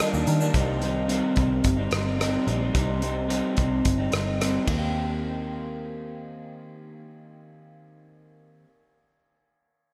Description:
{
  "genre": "indie pop, bedroom pop",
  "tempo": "109 BPM",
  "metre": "4/4",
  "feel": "straight",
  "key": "Eb major",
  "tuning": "A4 = 437 Hz",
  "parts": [
    { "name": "electric guitar through a small old amp", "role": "accompaniment", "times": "0.0-8.7 s", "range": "C3 to G4", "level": "-30 LUFS", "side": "equal", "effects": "subtle chorus, warbly pitch drift" },
    { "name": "granular cloud pad", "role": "sustained chords", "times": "0.0-0.5 s", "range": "Eb3 to G5", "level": "-40 LUFS", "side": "equal", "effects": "built-in reverb" },
    { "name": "vintage muted picked electric bass", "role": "bass", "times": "0.0-8.6 s", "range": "G1 to Eb3", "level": "-30 LUFS", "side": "equal", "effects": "none" },
    { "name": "loose indie drum kit", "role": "drums", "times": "0.0-4.8 s", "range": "hi-hat, kick drum, ride cymbal, rim click, shaker", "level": "-30 LUFS", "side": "equal", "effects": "none" }
  ],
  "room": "moderate lush hall reverb, RT60 2.8 s",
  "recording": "dreamy mix soaked in reverb",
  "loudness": "-25 LUFS",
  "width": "mono",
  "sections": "0.5-4.9 A section; 4.9-7.2 B section",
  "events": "none",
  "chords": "0.0 Ebmaj7; 0.5 Cm; 4.7 Eb6"
}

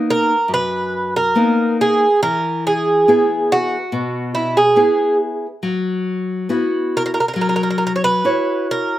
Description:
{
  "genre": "fado-style ballad",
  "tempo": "70 BPM",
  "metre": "4/4",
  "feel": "rubato",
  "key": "B major",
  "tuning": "A4 = 439 Hz",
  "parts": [
    { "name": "nylon-string guitar", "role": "accompaniment", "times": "0.0-9.0 s", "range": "F#2 to C#5", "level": "-19 LUFS", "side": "left 2 dB", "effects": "slapback echo" },
    { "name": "Irish bouzouki", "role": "melody", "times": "0.1-9.0 s", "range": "E4 to C#5", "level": "-16 LUFS", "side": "right 2 dB", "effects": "none" }
  ],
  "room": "little or no reverb",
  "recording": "recorded outdoors, with no room sound",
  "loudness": "-15 LUFS",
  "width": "side -13 dB against mid",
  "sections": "0.0-9.0 A section",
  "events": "none",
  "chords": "0.0 Bmaj7; 2.2 E; 5.6 F#7sus4; 7.4 F#5"
}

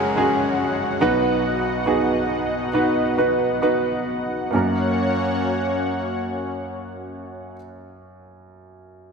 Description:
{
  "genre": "pop",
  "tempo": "65-72 BPM",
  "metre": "4/4",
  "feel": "straight",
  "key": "F# major",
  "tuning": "A4 = 440 Hz",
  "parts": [
    { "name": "clear concert grand piano", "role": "accompaniment", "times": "0.0-9.1 s", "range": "F#1 to B4", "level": "-21 LUFS", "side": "right 2 dB", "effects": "none" },
    { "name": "lush unison pad", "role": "sustained chords", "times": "0.0-7.6 s", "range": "G#3 to F#5", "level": "-24 LUFS", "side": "left 2 dB", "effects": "chorus" },
    { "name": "downlifter", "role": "sound effects", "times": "0.0-4.5 s", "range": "none", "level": "-35 LUFS", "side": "left 2 dB", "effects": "none" }
  ],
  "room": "moderate lush hall reverb, RT60 2.2 s",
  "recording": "none",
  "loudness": "-19 LUFS",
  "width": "side -5 dB against mid",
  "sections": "0.0-4.5 A section; 4.5-8.2 B section",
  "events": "slowing down 0.0-4.5",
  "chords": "0.0 F#sus2; 1.0 B; 4.5 F#"
}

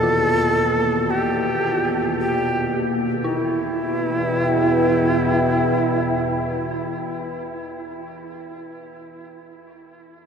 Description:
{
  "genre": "ambient",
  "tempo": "56 BPM",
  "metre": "4/4",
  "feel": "straight",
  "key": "E phrygian",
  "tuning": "A4 = 440 Hz",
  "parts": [
    { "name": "bright reedy shakuhachi", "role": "melody", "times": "0.0-8.1 s", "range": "E4 to A4", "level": "-23 LUFS", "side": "equal", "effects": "tape echo" },
    { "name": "dark analog pad", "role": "sustained chords", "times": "0.0-8.3 s", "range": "D#3 to G5", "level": "-25 LUFS", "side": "equal", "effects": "chorus, phaser" },
    { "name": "dark detuned synth bell", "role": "arpeggios", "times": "0.0-10.1 s", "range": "E4 to F4", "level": "-30 LUFS", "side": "equal", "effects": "chorus, phaser, tape echo" },
    { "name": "bowed-like drone", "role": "drone", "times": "0.0-8.1 s", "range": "E2 to B2", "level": "-24 LUFS", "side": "equal", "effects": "built-in reverb" }
  ],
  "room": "wet huge ambient reverb, RT60 7.8 s",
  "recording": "none",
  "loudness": "-18 LUFS",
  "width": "side -6 dB against mid",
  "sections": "0.0-3.2 A section; 3.2-7.5 B section",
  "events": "none",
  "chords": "0.0 D#maj7; 3.2 Em"
}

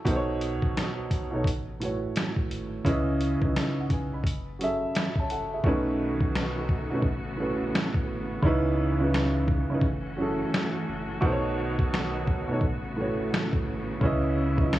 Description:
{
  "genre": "lo-fi hip hop",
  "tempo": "86 BPM",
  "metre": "4/4",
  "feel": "swing 64% on 16ths",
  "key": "unclear",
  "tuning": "A4 = 440 Hz",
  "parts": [
    { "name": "dark upright piano", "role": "accompaniment", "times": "0.0-14.8 s", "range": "A2 to B5", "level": "-27 LUFS", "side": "right 1 dB", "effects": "low-pass filter" },
    { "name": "saturated sub bass", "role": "bass", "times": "0.1-14.8 s", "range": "F#1 to C#2", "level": "-34 LUFS", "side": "equal", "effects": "none" },
    { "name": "lo-fi sampler-style drum kit", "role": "drums", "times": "0.1-14.8 s", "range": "finger snaps, hi-hat, kick drum, snare drum", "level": "-27 LUFS", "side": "equal", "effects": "none" },
    { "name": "bright studio string section", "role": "sustained chords", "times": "5.6-14.8 s", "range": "C#3 to F#4", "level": "-35 LUFS", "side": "left 2 dB", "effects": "low-pass filter" }
  ],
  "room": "light reverb, small room ambience",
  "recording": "none",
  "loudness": "-25 LUFS",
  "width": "side -14 dB against mid",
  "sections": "0.0-5.6 A section; 5.6-14.8 B section",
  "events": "hi-hats muted 5.6-14.8",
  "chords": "0.1 B7; 1.5 A69; 2.9 C#m7; 4.2 F#m7; 5.6 B7; 7.0 A69; 8.4 C#m7; 9.8 F#m7; 11.2 B7; 12.6 A69; 14.0 C#m7"
}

